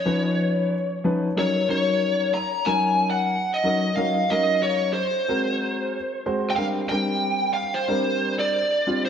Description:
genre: jazz.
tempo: 92 BPM.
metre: 4/4.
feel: swing 56% on 16ths.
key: unclear.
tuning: A4 = 443 Hz.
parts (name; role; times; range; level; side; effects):
lead guitar through a small cranked amp; melody; 0.0-9.1 s; C5 to Bb5; -23 LUFS; equal; overdrive, wide subtle chorus, digital delay.
dark baby grand piano; accompaniment; 0.1-9.1 s; F3 to C5; -25 LUFS; left 1 dB; lush chorus.
room: wet lush hall reverb, RT60 2.2 s.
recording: bright 1980s-style digital production.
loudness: -21 LUFS.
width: side -8 dB against mid.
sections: 0.0-9.1 A section.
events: none.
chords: 0.0 Db9; 1.3 Gb6; 5.3 Ab9; 6.6 Bb69.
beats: 0.04 0.70 | 1.35 2.00 2.65 3.31 | 3.96 4.61 5.27 5.92 | 6.57 7.23 7.88 8.54.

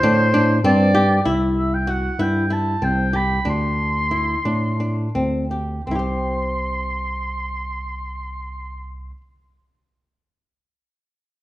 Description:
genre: contemporary instrumental, chamber music in an uneven meter.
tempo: 162-196 BPM (eighths).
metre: 7/8.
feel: straight.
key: C lydian.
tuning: A4 = 440 Hz.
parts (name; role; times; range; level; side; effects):
warm oboe; melody; 0.0-9.1 s; C5 to C6; -23 LUFS; equal; none.
flamenco guitar; arpeggios; 0.0-9.2 s; C4 to C5; -23 LUFS; left 1 dB; none.
barky tine electric piano; bass; 0.0-9.1 s; C2 to A2; -22 LUFS; right 1 dB; none.
room: moderate recital hall reverb, RT60 1.4 s.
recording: none.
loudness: -18 LUFS.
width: side -16 dB against mid.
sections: 0.0-1.3 A section; 1.3-5.9 B section; 5.9-11.1 C section.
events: slowing down 1.3-5.9.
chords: 0.0 D7sus4; 1.3 C; 3.5 D5; 5.9 C5.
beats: 0.03 0.34 0.64 0.95 | 1.26 1.56 1.87 2.18 2.50 2.81 3.13 | 3.45 3.78 4.11 4.45 4.80 5.15 5.51 | 5.87 6.25 6.62 6.99 7.36 7.73 8.10 | 8.47 8.84.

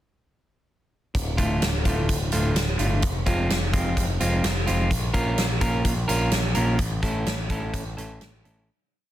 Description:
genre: quiet-loud alternative rock.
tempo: 127 BPM.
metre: 4/4.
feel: straight.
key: D harmonic minor.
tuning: A4 = 440 Hz.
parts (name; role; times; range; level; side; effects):
growling picked electric bass; bass; 1.1-8.7 s; D1 to Bb1; -26 LUFS; equal; overdrive.
big rock drum kit; drums; 1.1-8.6 s; hi-hat, kick drum, snare drum; -26 LUFS; equal; none.
electric guitar at the edge of break-up; arpeggios; 1.4-8.7 s; A2 to Bb4; -26 LUFS; right 1 dB; none.
room: light reverb, small room ambience.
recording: dense, heavily limited modern master.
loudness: -21 LUFS.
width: side -13 dB against mid.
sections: 1.1-8.7 verse.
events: fade-out 6.8-8.7.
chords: 1.1 Dm; 3.0 Fm; 4.9 Bbm; 6.8 A.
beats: | 1.14 1.61 2.09 2.56 | 3.03 3.50 3.97 4.44 | 4.92 5.39 5.86 6.33 | 6.80 7.27 7.75 8.22.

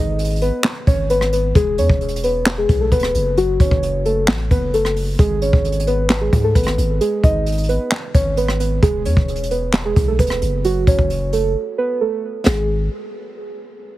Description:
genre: hip hop, trap.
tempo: 132 BPM.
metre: 4/4.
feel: half-time.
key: G# phrygian.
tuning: A4 = 440 Hz.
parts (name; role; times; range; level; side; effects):
muted felt-like synth keys; melody; 0.0-12.7 s; F#4 to D#5; -20 LUFS; right 1 dB; chorus, tape echo.
long sustained 808-style bass; bass; 0.0-12.9 s; E1 to G#2; -20 LUFS; equal; none.
jazz brush drum kit; drums; 0.2-12.6 s; handclaps, hi-hat, kick drum, rim click, snare drum, splash cymbal; -18 LUFS; equal; none.
room: small room reverb.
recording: heavily compressed radio sound, multiband compression.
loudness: -15 LUFS.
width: side -16 dB against mid.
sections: 0.0-12.5 A section; 12.5-14.0 B section.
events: break 11.6-12.5.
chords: 0.0 G#m; 1.6 E5; 3.4 F#m; 5.2 G#m; 8.8 E5; 10.6 F#5; 12.5 N.C..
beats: 0.19 0.65 1.10 | 1.55 2.01 2.46 2.92 | 3.37 3.83 4.28 4.74 | 5.19 5.64 6.10 6.55 | 7.01 7.46 7.92 8.37 | 8.83 9.28 9.74 10.19 | 10.64 11.10 11.55 12.01 | 12.46.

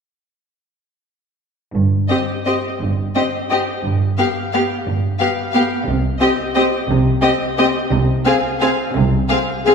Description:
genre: classical, orchestral ballroom waltz.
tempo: 175 BPM.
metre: 3/4.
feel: uneven beats, rubato.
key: C minor.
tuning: A4 = 438 Hz.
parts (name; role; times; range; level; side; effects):
rich symphonic cello section; bass; 1.7-9.2 s; G2 to C3; -22 LUFS; right 2 dB; none.
rich symphonic double bass section; bass; 1.8-9.2 s; G1 to C2; -22 LUFS; right 2 dB; none.
clear symphonic violin section; melody; 2.1-9.7 s; Eb5 to F5; -23 LUFS; left 4 dB; none.
rich symphonic violin section; second line; 2.1-9.7 s; G4 to Ab4; -21 LUFS; left 2 dB; none.
rich symphonic viola section; accompaniment; 2.1-9.7 s; B3 to C4; -21 LUFS; right 1 dB; none.
dark French horn section; sustained chords; 9.7 s; Ab4; -12 LUFS; left 4 dB; none.
room: wet scoring stage reverb, RT60 1.8 s.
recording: heard from further back in the room.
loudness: -15 LUFS.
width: side -6 dB against mid.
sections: 1.7-9.7 A section.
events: none.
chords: 1.7 C5/G; 3.8 G; 5.9 N.C..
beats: | 1.75 2.10 2.47 | 2.81 3.15 3.51 | 3.85 4.18 4.54 | 4.87 5.21 5.55 | 5.88 6.21 6.56 | 6.89 7.23 7.58 | 7.92 8.26 8.61 | 8.96 9.30 9.67.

